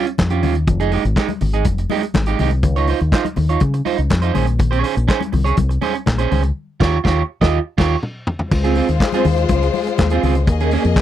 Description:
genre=disco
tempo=122 BPM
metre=4/4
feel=straight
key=unclear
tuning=A4 = 440 Hz
part: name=electric guitar at the edge of break-up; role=accompaniment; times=0.0-11.0 s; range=Ab3 to Eb5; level=-20 LUFS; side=right 10 dB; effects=none
part: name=warm soul drum kit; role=drums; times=0.1-11.0 s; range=crash cymbal, handclaps, hi-hat, kick drum, snare drum, toms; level=-19 LUFS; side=left 1 dB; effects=none
part: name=fingered electric bass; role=bass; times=0.2-10.9 s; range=F1 to Db3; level=-18 LUFS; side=left 1 dB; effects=none
part: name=congas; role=percussion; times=0.2-11.0 s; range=none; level=-26 LUFS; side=left 8 dB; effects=none
part: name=warm studio string section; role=second line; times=8.5-11.0 s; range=Ab3 to Eb5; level=-20 LUFS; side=left 8 dB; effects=none
room=little or no reverb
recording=dry, close 1970s-style studio recording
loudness=-15 LUFS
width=side -12 dB against mid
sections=0.0-8.5 A section; 8.5-11.0 B section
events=band accent 6.6-8.5; drum fill 7.5-8.5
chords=0.0 Eb9; 0.7 Fm9; 2.6 Dbmaj9; 4.3 Bbm9; 6.6 Eb9; 8.5 Dbmaj7; 10.5 Eb7sus4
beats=0.19 | 0.68 1.17 1.66 2.15 | 2.63 3.12 3.62 4.11 | 4.59 5.08 5.58 6.07 | 6.55 7.05 7.54 8.03 | 8.52 9.01 9.50 9.99 | 10.48 10.97

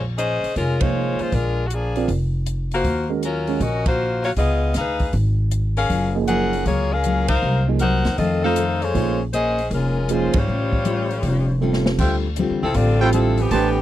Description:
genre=jazz, big band swing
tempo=157 BPM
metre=4/4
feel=swing 66% on 8ths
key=Bb minor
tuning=A4 = 440 Hz
part: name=bright saxophone section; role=melody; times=0.0-13.8 s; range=E3 to Gb5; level=-22 LUFS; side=left 2 dB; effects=none
part: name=upright bass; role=bass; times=0.0-13.8 s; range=F1 to F2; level=-22 LUFS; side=equal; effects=none
part: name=swinging big-band drum kit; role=drums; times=0.2-13.6 s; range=crash cymbal, hi-hat, kick drum, ride cymbal, snare drum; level=-26 LUFS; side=equal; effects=none
part: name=warm concert grand piano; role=accompaniment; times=0.8-3.6, 6.2-13.8 s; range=F3 to D5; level=-24 LUFS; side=right 9 dB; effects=none
part: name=picked steel-string acoustic guitar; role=accompaniment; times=5.9-13.8 s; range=F2 to C5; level=-25 LUFS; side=left 4 dB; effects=none
part: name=warm trumpet section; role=stabs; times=12.0-13.7 s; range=F4 to A5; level=-22 LUFS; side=right 2 dB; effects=none
room=little or no reverb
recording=dry, close 1970s-style studio recording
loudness=-18 LUFS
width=side -13 dB against mid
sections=0.0-12.0 A section; 12.0-13.8 B section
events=band accent 0.8, 3.8, 7.2, 10.3; drum fill 11.6-12.0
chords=0.0 Bbm9; 1.3 Bb7; 2.9 Ebm9; 4.4 Db9; 5.9 Gbmaj9; 7.4 Cm7b5; 8.2 F7; 8.9 Bbm9; 10.5 A7alt; 12.0 Dm11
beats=0.18 0.56 0.94 | 1.32 1.71 2.09 2.47 | 2.85 3.23 3.61 3.99 | 4.38 4.76 5.14 5.52 | 5.90 6.28 6.66 7.04 | 7.42 7.81 8.19 8.57 | 8.95 9.33 9.71 10.09 | 10.47 10.85 11.23 11.62 | 12.00 12.38 12.76 13.14 | 13.52

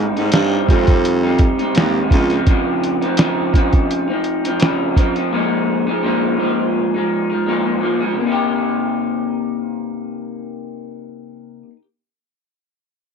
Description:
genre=indie pop, bedroom pop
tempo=84 BPM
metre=4/4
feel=swing 55% on 16ths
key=C phrygian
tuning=A4 = 443 Hz
part: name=electric guitar through a small old amp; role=accompaniment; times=0.0-11.8 s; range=Ab2 to G4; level=-18 LUFS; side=left 1 dB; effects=lush chorus, warbly pitch drift
part: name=breathy baritone saxophone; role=bass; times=0.0-2.4 s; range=Db2 to Ab2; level=-18 LUFS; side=right 1 dB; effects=none
part: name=lo-fi sampler-style drum kit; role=drums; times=0.2-5.3 s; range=hi-hat, kick drum, snare drum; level=-15 LUFS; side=equal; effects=none
room=little or no reverb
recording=dry, close 1970s-style studio recording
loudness=-15 LUFS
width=side -6 dB against mid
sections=0.0-8.2 A section; 8.2-11.0 B section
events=none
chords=0.0 Abmaj7; 2.1 Dbmaj9; 5.3 Bb7sus4; 8.2 Cm7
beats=0.33 1.04 1.75 | 2.47 3.18 3.90 4.61 | 5.32 6.04 6.75 7.47 | 8.18 8.90 9.61 10.33

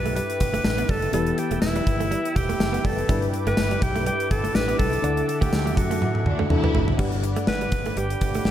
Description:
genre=1980s-style pop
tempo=123 BPM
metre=4/4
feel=swing 55% on 16ths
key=G major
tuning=A4 = 438 Hz
part: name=clear alto saxophone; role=melody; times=0.0-8.5 s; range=E4 to B4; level=-27 LUFS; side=equal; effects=tape echo
part: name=mellow FM electric piano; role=accompaniment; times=0.0-8.5 s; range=G2 to F#5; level=-29 LUFS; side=left 3 dB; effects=chorus
part: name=brassy analog pad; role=sustained chords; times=0.0-8.5 s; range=A4 to E6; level=-34 LUFS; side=left 1 dB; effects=chorus
part: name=mellow fretless electric bass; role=bass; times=0.0-8.5 s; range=E1 to F#2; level=-28 LUFS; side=equal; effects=none
part: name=direct-recorded clean electric guitar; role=riff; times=0.1-8.5 s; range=F#3 to D4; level=-32 LUFS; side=right 6 dB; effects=lush chorus
part: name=gated 80s drum kit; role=drums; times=0.1-8.5 s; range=crash cymbal, hi-hat, kick drum, snare drum, tambourine, toms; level=-24 LUFS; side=equal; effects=none
part: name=warm studio violin section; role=second line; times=6.3-7.0 s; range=D4 to E4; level=-31 LUFS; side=left 4 dB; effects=tape echo
room=moderate lush hall reverb, RT60 1.8 s, small room ambience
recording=big arena sound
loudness=-20 LUFS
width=side -11 dB against mid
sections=0.0-7.0 A section; 7.0-8.5 B section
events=drum fill 6.0-7.0; alto saxophone solo 7.0-8.5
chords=0.0 G6; 1.1 Em; 3.1 G6; 5.0 Dadd9; 7.0 Gmaj7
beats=0.16 0.65 | 1.14 1.63 2.12 2.60 | 3.09 3.58 4.07 4.55 | 5.04 5.53 6.02 6.50 | 6.99 7.48 7.97 8.46

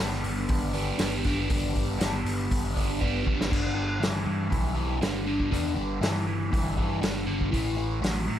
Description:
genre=classic rock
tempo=119 BPM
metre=4/4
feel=straight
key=G major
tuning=A4 = 438 Hz
part: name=overdriven electric guitar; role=riff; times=0.0-8.4 s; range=G2 to D4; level=-29 LUFS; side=equal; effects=phaser
part: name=overdriven picked electric bass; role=bass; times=0.0-8.4 s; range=G1 to A2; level=-31 LUFS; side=equal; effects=none
part: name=vintage drum kit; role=drums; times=0.1-8.2 s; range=crash cymbal, hi-hat, kick drum, snare drum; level=-29 LUFS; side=equal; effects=none
room=small room ambience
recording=none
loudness=-25 LUFS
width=side -11 dB against mid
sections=0.0-3.5 A section; 3.5-8.4 B section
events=drum fill 3.0-3.5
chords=0.0 G; 3.5 G5; 7.5 A5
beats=0.50 1.00 | 1.50 2.01 2.51 3.01 | 3.52 4.02 4.52 5.02 | 5.53 6.03 6.53 7.04 | 7.54 8.04

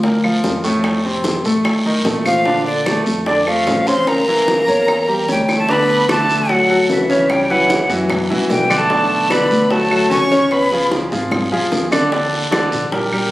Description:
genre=Afro-Cuban jazz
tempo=149 BPM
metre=4/4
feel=straight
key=D major from 5.7 s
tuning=A4 = 440 Hz
part: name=clear baby grand piano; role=accompaniment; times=0.0-13.3 s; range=A2 to D5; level=-18 LUFS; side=equal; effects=none
part: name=upright bass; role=bass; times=0.0-13.3 s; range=G#1 to Bb2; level=-22 LUFS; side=equal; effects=none
part: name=bongos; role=percussion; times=0.0-13.3 s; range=none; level=-25 LUFS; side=left 3 dB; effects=none
part: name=congas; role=percussion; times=0.0-13.3 s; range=none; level=-27 LUFS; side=equal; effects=none
part: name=guiro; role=percussion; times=0.0-13.3 s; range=none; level=-28 LUFS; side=equal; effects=none
part: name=claves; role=percussion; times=0.2-13.3 s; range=none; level=-26 LUFS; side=equal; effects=none
part: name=breathy bright jazz flute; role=melody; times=2.3-10.9 s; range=D5 to C#6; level=-18 LUFS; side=equal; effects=none
part: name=warm tenor saxophone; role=second line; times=2.3-10.9 s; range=D3 to C#4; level=-20 LUFS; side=equal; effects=none
room=light reverb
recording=recorded on a phone in the room, studio reverb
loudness=-13 LUFS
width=side -17 dB against mid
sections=0.0-5.7 A section; 5.7-13.3 B section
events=drum fill 5.5, 11.3-12.1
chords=0.0 Gm7 (rootless); 0.8 F7; 2.5 Bbmaj7; 4.1 A7b9; 5.7 Dmaj9; 7.3 Em69/C#; 8.1 F#5; 8.9 Bm9; 10.5 C#9; 12.1 Ebmaj7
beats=0.04 0.44 | 0.85 1.25 1.65 2.06 | 2.46 2.86 3.27 3.67 | 4.07 4.48 4.88 5.28 | 5.69 6.09 6.49 6.89 | 7.30 7.70 8.10 8.50 | 8.91 9.31 9.71 10.11 | 10.52 10.92 11.32 11.72 | 12.12 12.52 12.93

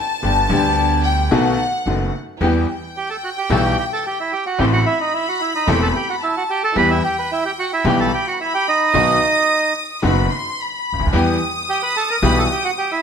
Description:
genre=tango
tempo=110 BPM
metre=4/4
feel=rubato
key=E harmonic minor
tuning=A4 = 439 Hz
part: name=warm studio violin section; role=second line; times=0.0-13.0 s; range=F#5 to D#6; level=-23 LUFS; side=left 3 dB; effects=none
part: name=bright grand piano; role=accompaniment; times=0.2-12.5 s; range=E1 to A4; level=-20 LUFS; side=left 3 dB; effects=none
part: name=warm studio string section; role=stabs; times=0.2-12.5 s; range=B3 to A4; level=-27 LUFS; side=right 2 dB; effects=none
part: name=upright bass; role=bass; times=0.2-12.5 s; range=E1 to E2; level=-21 LUFS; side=right 2 dB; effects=none
part: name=bandoneon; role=melody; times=3.0-13.0 s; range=D#4 to B5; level=-19 LUFS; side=right 4 dB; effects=none
room=moderate large studio reverb, RT60 1.3 s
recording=none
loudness=-16 LUFS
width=side -7 dB against mid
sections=0.0-2.4 A section; 2.4-13.0 B section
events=violin section solo 0.0-2.4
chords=0.2 G; 1.3 B7; 2.4 Em; 4.6 Am; 6.8 Em; 8.9 B; 11.1 Em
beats=| 0.23 0.77 1.32 1.86 | 2.41 2.96 3.50 4.04 | 4.59 5.13 5.67 6.22 | 6.76 7.30 7.85 8.39 | 8.94 9.49 10.03 10.58 | 11.13 11.68 12.23 12.78

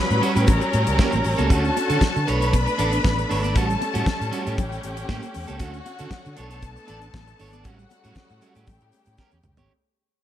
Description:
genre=disco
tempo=117 BPM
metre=4/4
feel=straight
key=unclear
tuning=A4 = 438 Hz
part: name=clear studio string section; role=second line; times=0.0-9.7 s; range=F#4 to B5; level=-27 LUFS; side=left 1 dB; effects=none
part: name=clear studio string section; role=sustained chords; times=0.0-9.7 s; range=C#3 to F#4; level=-28 LUFS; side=left 1 dB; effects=none
part: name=electric guitar at the edge of break-up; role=accompaniment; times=0.1-9.7 s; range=G3 to D5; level=-28 LUFS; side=right 6 dB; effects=none
part: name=fingered electric bass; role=bass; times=0.1-9.7 s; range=G#1 to D3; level=-25 LUFS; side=equal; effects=none
part: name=tube shaker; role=percussion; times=0.1-9.7 s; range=none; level=-44 LUFS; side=left 16 dB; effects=none
part: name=damped 70s drum kit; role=drums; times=0.2-9.7 s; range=hi-hat, kick drum, snare drum, toms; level=-23 LUFS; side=equal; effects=gated reverb
part: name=congas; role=percussion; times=0.5-9.7 s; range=none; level=-33 LUFS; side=left 7 dB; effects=none
room=small room ambience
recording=none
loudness=-19 LUFS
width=side -11 dB against mid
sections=0.0-9.7 A section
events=fade-out 0.0-9.7; drum fill 9.2-9.7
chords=0.5 A7b9; 1.5 Dmaj7; 2.3 Bm9; 3.6 A6; 4.6 A7b9; 5.6 Dmaj7; 6.4 Bm9; 7.7 A6; 8.7 A7b9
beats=0.48 0.99 | 1.50 2.02 2.53 3.04 | 3.55 4.07 4.58 5.09 | 5.60 6.12 6.63 7.14 | 7.65 8.16 8.68 9.19

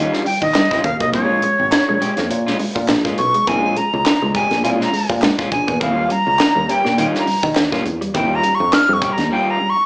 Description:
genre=funk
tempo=103 BPM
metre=4/4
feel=swing 56% on 16ths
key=Bb dorian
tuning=A4 = 439 Hz
part: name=electric guitar at the edge of break-up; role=accompaniment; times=0.0-9.8 s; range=G3 to G4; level=-22 LUFS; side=left 1 dB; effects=slapback echo
part: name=fingered electric bass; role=bass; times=0.0-9.3 s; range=Ab1 to Eb3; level=-21 LUFS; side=equal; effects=none
part: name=tight funk drum kit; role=drums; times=0.1-9.3 s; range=hi-hat, kick drum, snare drum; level=-20 LUFS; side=equal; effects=none
part: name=breathy bright jazz flute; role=melody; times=0.3-9.9 s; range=Db5 to F6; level=-17 LUFS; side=equal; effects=slapback echo
part: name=mellow electric guitar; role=riff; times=0.3-9.7 s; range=G3 to Bb3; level=-25 LUFS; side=equal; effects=phaser, slapback echo
part: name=group handclap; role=percussion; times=0.5-8.9 s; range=none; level=-26 LUFS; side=left 1 dB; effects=none
room=light reverb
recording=live gig heard through the venue's PA, club reverb, small speaker sound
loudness=-14 LUFS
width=side -25 dB against mid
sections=0.0-9.9 A section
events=flute solo 0.0-9.9; break 9.3-9.9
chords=0.0 Eb9; 1.1 Bbm7; 5.8 Eb9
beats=0.55 | 1.14 1.72 2.31 2.89 | 3.48 4.06 4.64 5.23 | 5.81 6.40 6.98 7.56 | 8.15 8.73 9.31

